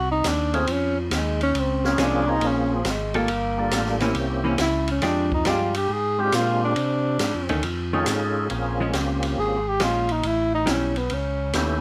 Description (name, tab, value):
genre	soul jazz organ trio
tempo	138 BPM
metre	4/4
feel	swing 68% on 8ths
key	unclear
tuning	A4 = 440 Hz
part	dark tenor saxophone	melody	0.0-11.8 s	F3 to Ab4	-26 LUFS	equal	none
part	tonewheel organ	bass	0.0-11.8 s	G1 to C3	-29 LUFS	equal	overdrive, slow rotary speaker
part	open jazz drum kit	drums	0.2-11.7 s	hi-hat, kick drum, ride cymbal, snare drum	-32 LUFS	equal	none
part	percussive tonewheel organ	melody	0.5-11.8 s	G3 to A4	-28 LUFS	equal	slow rotary speaker, overdrive, chorus vibrato
part	hollow-body jazz guitar	accompaniment	2.0-10.9 s	Eb3 to A4	-28 LUFS	equal	none
room	moderate small room reverb, RT60 0.5 s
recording	none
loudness	-23 LUFS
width	mono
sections	0.0-8.5 A section; 8.5-11.8 A section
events	tenor saxophone solo 0.0-11.8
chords	0.0 Cm6; 0.7 Eb9sus4; 1.5 Bbm7; 3.3 Gm9; 4.2 C7b9; 5.0 Fm69; 7.6 F7alt; 8.5 Bbm7; 10.2 A7